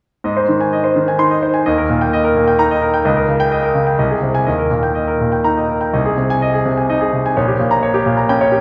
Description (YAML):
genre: classical, virtuoso piano study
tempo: 128 BPM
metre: 3/4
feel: rubato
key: Ab major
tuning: A4 = 440 Hz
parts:
  - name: clear concert grand piano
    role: solo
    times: 0.2-8.6 s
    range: Bb1 to C6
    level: -16 LUFS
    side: equal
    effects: none
room: wet recital hall reverb, RT60 1.8 s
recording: heard from further back in the room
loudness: -16 LUFS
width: mono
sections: 0.2-8.6 A section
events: none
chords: 0.2 Ab; 1.7 Eb; 3.0 Eb7/Db; 4.0 Ab/C; 4.5 Eb; 5.9 Ab/C; 7.4 Gdim/Bb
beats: | 0.24 0.72 1.19 | 1.66 2.12 2.58 | 3.05 3.51 3.98 | 4.46 4.95 5.44 | 5.93 6.41 6.89 | 7.36 7.82 8.29